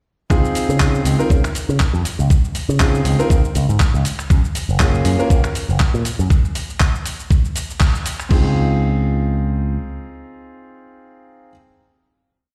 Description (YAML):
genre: nu-disco, nu disco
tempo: 120 BPM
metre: 4/4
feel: swing 55% on 16ths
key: Db major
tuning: A4 = 441 Hz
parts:
  - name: clear grand piano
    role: accompaniment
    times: 0.3-11.5 s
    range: Bb3 to Bb4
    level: -25 LUFS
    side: equal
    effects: sidechain pumping, delay
  - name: picked electric bass with an envelope filter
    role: bass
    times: 0.3-9.8 s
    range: Gb1 to Db3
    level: -20 LUFS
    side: equal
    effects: none
  - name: dusty soul sampler-style drum kit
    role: drums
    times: 0.3-8.4 s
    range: crash cymbal, finger snaps, handclaps, hi-hat, shaker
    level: -28 LUFS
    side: equal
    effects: none
  - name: electronic kick drum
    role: drums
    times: 0.3-8.4 s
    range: none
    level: -17 LUFS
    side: equal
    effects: none
room: little or no reverb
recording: played on a big sound system in a bare room, stone room reverb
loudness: -17 LUFS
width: mono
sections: 0.3-8.3 drop; 8.3-12.3 final chord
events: drop 0.3-8.3; band accent 7.8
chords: 0.3 Dbmaj9; 4.1 Gbmaj7; 8.3 Dbmaj9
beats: | 0.30 0.80 1.30 1.80 | 2.30 2.80 3.30 3.80 | 4.30 4.80 5.30 5.80 | 6.30 6.80 7.30 7.80 | 8.30 8.80 9.30 9.80 | 10.30 10.80 11.30